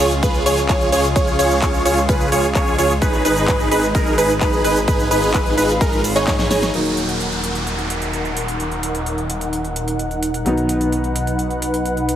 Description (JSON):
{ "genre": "EDM, festival progressive house", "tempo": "129 BPM", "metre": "4/4", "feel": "straight", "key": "Eb minor", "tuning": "A4 = 440 Hz", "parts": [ { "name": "lush unison pad", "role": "sustained chords", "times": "0.0-12.2 s", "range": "Db3 to Gb5", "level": "-24 LUFS", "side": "equal", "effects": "chorus, sidechain pumping" }, { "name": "wide unison pluck", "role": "arpeggios", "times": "0.0-6.7 s", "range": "Bb4 to Db5", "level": "-22 LUFS", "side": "right 1 dB", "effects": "sidechain pumping, tape echo" }, { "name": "dense compressed supersaw", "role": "riff", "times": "0.0-6.7 s", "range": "Eb4 to Db5", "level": "-19 LUFS", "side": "right 1 dB", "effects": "sidechain pumping, tape echo" }, { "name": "wide detuned saw bass", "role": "bass", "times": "0.0-12.2 s", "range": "Eb1 to Ab2", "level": "-24 LUFS", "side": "equal", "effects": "chorus, sidechain pumping" }, { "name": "big-room dance drum kit", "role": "drums", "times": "0.0-12.2 s", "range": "crash cymbal, handclaps, hi-hat, ride cymbal, shaker, snare drum", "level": "-26 LUFS", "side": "right 1 dB", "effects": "small room ambience" }, { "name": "electronic kick drum", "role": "drums", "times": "0.2-6.4 s", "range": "none", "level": "-19 LUFS", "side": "equal", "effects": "overdrive, small room ambience" }, { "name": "felt-muted upright piano", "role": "accompaniment", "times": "6.7-12.2 s", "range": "Eb3 to Eb4", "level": "-24 LUFS", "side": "equal", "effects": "sidechain pumping, tape echo" }, { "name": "downlifter", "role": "sound effects", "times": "6.7-10.5 s", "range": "none", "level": "-26 LUFS", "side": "equal", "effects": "none" } ], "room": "moderate lush hall reverb, RT60 1.8 s", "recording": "heavily compressed radio sound", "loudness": "-16 LUFS", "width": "side -10 dB against mid", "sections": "0.0-6.7 A section; 6.7-12.2 B section", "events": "drop 0.0-6.7; drum fill 6.3-6.7", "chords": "0.0 Db; 3.0 Abm; 6.7 Ebm; 10.5 B" }